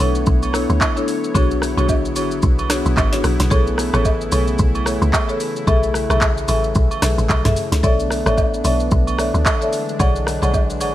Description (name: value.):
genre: amapiano.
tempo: 111 BPM.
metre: 4/4.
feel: swing 58% on 16ths.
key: B dorian.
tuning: A4 = 440 Hz.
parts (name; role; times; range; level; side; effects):
warm analog pad; sustained chords; 0.0-10.9 s; C#3 to C#5; -26 LUFS; right 1 dB; chorus, sidechain pumping.
marimba with medium mallets; stabs; 0.0-10.9 s; D4 to F#5; -22 LUFS; left 3 dB; ping-pong delay.
woody log drum bass; bass; 0.0-10.9 s; G#1 to D2; -19 LUFS; equal; none.
agogo bells and woodblock; percussion; 0.0-10.9 s; none; -27 LUFS; right 5 dB; none.
afro-pop drum kit; drums; 0.1-10.9 s; handclaps, hi-hat, kick drum, rim click, shaker, snare drum, toms; -20 LUFS; equal; none.
room: light reverb.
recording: none.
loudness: -15 LUFS.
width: side -14 dB against mid.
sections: 0.0-10.9 A section.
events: none.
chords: 0.0 Bm11; 1.1 E13; 3.5 Amaj7; 5.4 F#m9; 7.8 Bm11; 9.7 E13.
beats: 0.27 0.81 | 1.35 1.89 2.43 2.97 | 3.51 4.05 4.59 5.13 | 5.67 6.21 6.75 7.30 | 7.84 8.38 8.92 9.46 | 10.00 10.54.